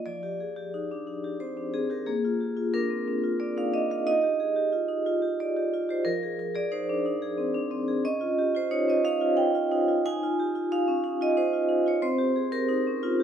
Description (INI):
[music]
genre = classical, contemporary piece for solo vibraphone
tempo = 90 BPM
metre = 3/4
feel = rubato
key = F dorian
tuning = A4 = 441 Hz
[part]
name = vibraphone with medium hard mallets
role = solo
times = 0.0-13.2 s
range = F3 to Ab5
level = -24 LUFS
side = right 1 dB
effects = none
[sound]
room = wet recital hall reverb, RT60 1.8 s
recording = close, detailed microphones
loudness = -24 LUFS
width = side -8 dB against mid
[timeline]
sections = 0.1-13.2 A section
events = none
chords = 0.1 Fm9; 2.1 Bbadd9; 4.1 Ebadd9; 6.1 Fm7; 8.0 Dbadd9; 12.0 Cm